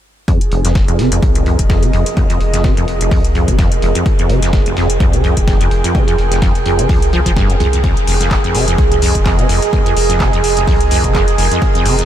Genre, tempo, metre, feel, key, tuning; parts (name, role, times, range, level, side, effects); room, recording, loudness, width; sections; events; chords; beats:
acid house; 127 BPM; 4/4; swing 55% on 16ths; F minor; A4 = 440 Hz
warm analog pad; sustained chords; 0.3-12.1 s; Ab4; -20 LUFS; right 7 dB; chorus, tremolo, sidechain pumping
acid bass, saw; riff; 0.3-12.1 s; F1 to F3; -17 LUFS; equal; tube saturation, lush chorus, vintage 12-bit sampler grit, tape echo
dusty soul sampler-style drum kit; drums; 0.3-12.1 s; hi-hat, snare drum; -32 LUFS; equal; sidechain pumping on hats, high-pass filter on hats, high-pass filter on snare
electronic kick drum; drums; 0.3-11.7 s; -15 LUFS; equal
warbly tape-like pad; texture; 0.3-12.1 s; F4 to G5; -24 LUFS; equal; chorus, built-in reverb, sidechain pumping
electro analog drum machine; drums; 0.4-12.1 s; handclaps, hi-hat; -22 LUFS; left 3 dB
round analog bass; bass; 0.5-12.1 s; F1 to C2; -17 LUFS; equal; sidechain pumping
light reverb; faint mains hum; -11 LUFS; side -11 dB against mid
0.3-12.1 A section
0.3 Fm7
| 0.28 0.75 1.23 1.70 | 2.17 2.64 3.12 3.59 | 4.06 4.53 5.00 5.48 | 5.95 6.42 6.89 7.37 | 7.84 8.31 8.78 9.26 | 9.73 10.20 10.67 11.15 | 11.62